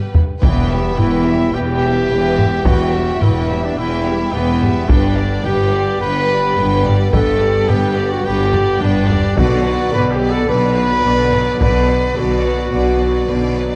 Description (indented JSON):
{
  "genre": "cinematic, epic orchestral film score",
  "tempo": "107 BPM",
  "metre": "4/4",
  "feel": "straight",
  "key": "E minor",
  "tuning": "A4 = 440 Hz",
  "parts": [
    { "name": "bright symphonic violin section", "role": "melody", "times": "0.0-13.8 s", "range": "B4 to G5", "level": "-31 LUFS", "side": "equal", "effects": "none" },
    { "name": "rich studio violin section", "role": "second line", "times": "0.0-13.8 s", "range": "B3 to D5", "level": "-30 LUFS", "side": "equal", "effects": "none" },
    { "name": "rich symphonic viola section", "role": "accompaniment", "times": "0.0-13.8 s", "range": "D3 to B3", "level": "-29 LUFS", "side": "equal", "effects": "none" },
    { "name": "mellow French horn section", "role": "sustained chords", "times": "0.0-13.8 s", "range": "G3 to B4", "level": "-22 LUFS", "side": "equal", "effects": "none" },
    { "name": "rich symphonic cello section", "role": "bass", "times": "0.1-13.8 s", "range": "E2 to B2", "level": "-24 LUFS", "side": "equal", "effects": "none" },
    { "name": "rich symphonic double bass section", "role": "bass", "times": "0.1-13.8 s", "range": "E1 to B1", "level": "-23 LUFS", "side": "equal", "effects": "none" },
    { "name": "taiko ensemble", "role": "drums", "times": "0.1-12.1 s", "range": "none", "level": "-20 LUFS", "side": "equal", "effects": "none" },
    { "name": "warm trombone section", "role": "sustained chords", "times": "0.4-13.8 s", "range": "D3 to B3", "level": "-29 LUFS", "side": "equal", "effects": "none" },
    { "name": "clear trumpet", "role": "stabs", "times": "0.4-13.5 s", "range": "B3 to B4", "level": "-24 LUFS", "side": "equal", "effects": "none" },
    { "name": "impact", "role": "sound effects", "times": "0.4-2.7 s", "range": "none", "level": "-28 LUFS", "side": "equal", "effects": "none" },
    { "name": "timpani", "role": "percussion", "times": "9.4-10.2 s", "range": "B2", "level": "-27 LUFS", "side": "equal", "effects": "none" }
  ],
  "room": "moderate scoring stage reverb, RT60 1.9 s",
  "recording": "worn, warbling old tape, cassette tape, warbly pitch drift",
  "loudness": "-15 LUFS",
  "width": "mono",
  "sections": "0.4-13.8 A section",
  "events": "drum fill 0.0-0.4, 8.5-9.4; impact 0.4-2.7",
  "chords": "0.4 Em; 4.9 G; 9.4 Bm",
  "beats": "| 0.42 0.98 1.54 2.10 | 2.65 3.21 3.77 4.33 | 4.89 5.45 6.01 6.57 | 7.12 7.68 8.24 8.80 | 9.36 9.92 10.48 11.04 | 11.60 12.15 12.71 13.27"
}